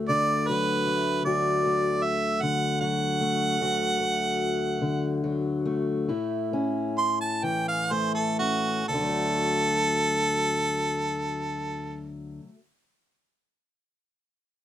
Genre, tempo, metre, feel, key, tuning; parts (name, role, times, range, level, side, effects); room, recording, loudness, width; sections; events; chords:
acoustic country blues, solo or duo; 40-52 BPM (dotted quarters); 12/8; straight; D major; A4 = 440 Hz
fingerpicked steel-string acoustic guitar; accompaniment; 0.0-12.6 s; D2 to F#4; -27 LUFS; left 3 dB
warm harmonica; melody; 0.1-12.1 s; F#4 to C6; -26 LUFS; right 3 dB
little or no reverb; close, detailed microphones; -24 LUFS; side -11 dB against mid
0.0-8.9 A section; 8.9-14.6 B section
slowing down 2.0-8.9
0.0 D; 6.1 A; 8.9 D